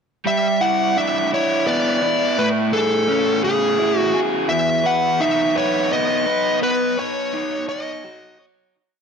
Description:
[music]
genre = rock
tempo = 56 BPM (dotted quarters)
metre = 6/8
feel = straight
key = unclear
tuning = A4 = 440 Hz
[part]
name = smooth overdriven lead guitar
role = melody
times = 0.3-8.4 s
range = G#4 to F#5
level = -20 LUFS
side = left 1 dB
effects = dub echo
[part]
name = raw garage guitar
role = riff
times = 0.3-8.8 s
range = E2 to C#5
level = -20 LUFS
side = equal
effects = overdrive, dub echo
[sound]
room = moderate plate reverb, RT60 2.5 s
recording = echo-heavy mix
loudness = -17 LUFS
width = side -6 dB against mid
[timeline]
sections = 0.3-8.8 verse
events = fade-out 6.6-8.8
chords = 0.3 G6; 2.4 Amaj7; 4.5 E5; 6.6 Badd9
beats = | 0.25 1.31 | 2.37 3.43 | 4.49 5.55 | 6.62 7.68

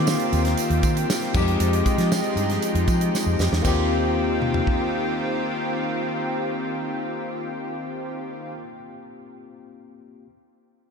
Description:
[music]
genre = polished 1980s jazz-funk pop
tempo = 117 BPM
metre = 4/4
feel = straight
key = Eb major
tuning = A4 = 439 Hz
[part]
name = barky tine electric piano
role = accompaniment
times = 0.0-10.3 s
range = G3 to G4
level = -27 LUFS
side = left 4 dB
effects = lush chorus
[part]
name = lush unison pad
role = sustained chords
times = 0.0-8.5 s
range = Eb3 to G4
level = -26 LUFS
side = right 1 dB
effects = chorus
[part]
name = vintage muted fingered electric bass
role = bass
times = 0.0-8.6 s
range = Eb2 to F3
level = -24 LUFS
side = equal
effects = none
[part]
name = modern studio drum kit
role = drums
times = 0.1-4.8 s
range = crash cymbal, hi-hat, kick drum, snare drum, toms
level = -26 LUFS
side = right 1 dB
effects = none
[part]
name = tambourine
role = percussion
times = 0.1-3.9 s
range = none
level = -37 LUFS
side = right 9 dB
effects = none
[sound]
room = moderate huge ambient reverb, RT60 4.1 s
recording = dreamy mix soaked in reverb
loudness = -21 LUFS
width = side -6 dB against mid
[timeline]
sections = 0.0-3.6 A section; 3.6-7.8 B section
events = drum fill 3.1-3.6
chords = 0.0 Eb69; 1.3 Fm9; 3.6 Eb69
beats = 0.06 0.58 1.09 | 1.60 2.11 2.62 3.14 | 3.65 4.16 4.67 5.19 | 5.70 6.21 6.73 7.24

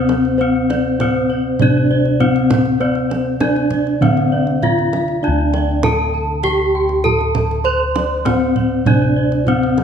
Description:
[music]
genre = Javanese gamelan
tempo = 99 BPM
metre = 4/4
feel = straight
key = unclear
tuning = A4 = 440 Hz
[part]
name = gamelan-type bronze metallophone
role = melody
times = 0.0-9.8 s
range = C4-25c to C5-25c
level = -17 LUFS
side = left 1 dB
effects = slapback echo
[part]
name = gamelan-type bossed gongs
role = arpeggios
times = 0.0-9.8 s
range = C5-25c to C6-25c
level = -24 LUFS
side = left 2 dB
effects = none
[part]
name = gamelan-type bronze metallophone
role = arpeggios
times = 0.0-9.8 s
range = C5-25c to C6-25c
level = -25 LUFS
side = right 8 dB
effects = none
[part]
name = gamelan-type bossed gongs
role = bass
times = 0.0-9.8 s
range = D2 to C5-25c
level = -20 LUFS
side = left 2 dB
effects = none
[part]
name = kendang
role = percussion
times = 0.1-9.8 s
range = none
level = -21 LUFS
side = right 4 dB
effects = none
[sound]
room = moderate recital hall reverb, RT60 1.3 s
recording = none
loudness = -14 LUFS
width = side -7 dB against mid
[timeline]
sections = 0.0-9.8 A section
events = none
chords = none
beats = | 0.39 1.00 1.60 2.21 | 2.81 3.42 4.02 4.63 | 5.23 5.84 6.44 7.05 | 7.66 8.26 8.87 9.47

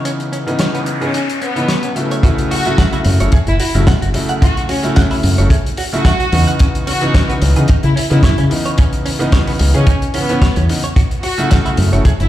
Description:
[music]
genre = nu-disco, nu disco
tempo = 110 BPM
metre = 4/4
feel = swing 54% on 16ths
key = F# dorian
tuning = A4 = 440 Hz
[part]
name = clear baby grand piano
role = accompaniment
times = 0.0-12.0 s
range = C#3 to E4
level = -19 LUFS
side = equal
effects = ping-pong delay
[part]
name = direct-recorded clean electric guitar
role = riff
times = 0.1-12.1 s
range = B3 to F#5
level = -26 LUFS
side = right 2 dB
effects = lush chorus, ping-pong delay
[part]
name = warm soul drum kit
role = drums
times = 0.1-12.3 s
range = hi-hat, snare drum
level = -22 LUFS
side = left 1 dB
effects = none
[part]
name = noise sweep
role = sound effects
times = 0.3-2.2 s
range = none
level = -26 LUFS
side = left 2 dB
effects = none
[part]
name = rich chamber violin section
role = melody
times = 1.0-12.3 s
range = B3 to F#4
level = -21 LUFS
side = left 1 dB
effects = ping-pong delay
[part]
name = kick drum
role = drums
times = 2.2-12.2 s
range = none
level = -13 LUFS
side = equal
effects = none
[part]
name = fingered electric bass with an envelope filter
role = bass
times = 3.1-12.3 s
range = F#1 to C#3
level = -13 LUFS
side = equal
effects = none
[sound]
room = light reverb, studio ambience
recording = played on a big sound system in a bare room, large studio reverb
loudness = -12 LUFS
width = side -13 dB against mid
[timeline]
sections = 0.0-2.2 A section; 2.2-12.3 B section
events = noise sweep 0.3-2.2; drop 2.2-12.3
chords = 0.0 C#m9; 2.2 F#m7; 6.6 C#m9; 11.0 F#m7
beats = | 0.05 0.60 1.14 1.69 | 2.23 2.78 3.33 3.87 | 4.42 4.96 5.51 6.05 | 6.60 7.14 7.69 8.23 | 8.78 9.33 9.87 10.42 | 10.96 11.51 12.05

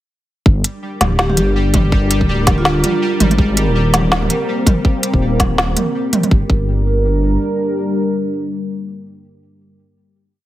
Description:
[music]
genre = half-time drum and bass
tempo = 164 BPM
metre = 4/4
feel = swing 57% on 16ths, half-time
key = G minor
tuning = A4 = 440 Hz
[part]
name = dark analog pad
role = sustained chords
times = 0.8-9.7 s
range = G3 to Bb4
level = -20 LUFS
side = equal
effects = chorus, sidechain pumping
[part]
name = dark detuned saw bass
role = bass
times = 0.5-7.4 s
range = D1 to Ab1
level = -16 LUFS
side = equal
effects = none
[part]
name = electronic kick drum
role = drums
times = 0.5-6.6 s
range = none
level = -13 LUFS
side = equal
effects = none
[part]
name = pulsing gated texture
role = texture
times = 0.7-6.3 s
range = G3 to G4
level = -24 LUFS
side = left 1 dB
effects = chorus, built-in reverb
[part]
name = organic electronic drum kit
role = drums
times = 0.6-6.3 s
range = hi-hat, snare drum, toms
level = -17 LUFS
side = right 1 dB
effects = overdrive
[part]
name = vibraphone with medium hard mallets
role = melody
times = 1.2-3.1 s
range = F4 to G4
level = -23 LUFS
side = right 2 dB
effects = digital delay
[sound]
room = light reverb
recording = heavily compressed radio sound, multiband compression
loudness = -13 LUFS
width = side -14 dB against mid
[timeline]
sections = 0.5-6.3 drop; 6.3-9.2 final chord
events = drop 0.5-6.3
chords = 0.5 Gm; 3.4 Abadd9; 6.3 Gm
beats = | 0.46 0.82 1.19 1.56 | 1.92 2.29 2.65 3.02 | 3.39 3.75 4.12 4.48 | 4.85 5.21 5.58 5.95 | 6.31 6.68 7.04 7.41 | 7.78 8.14 8.51 8.87

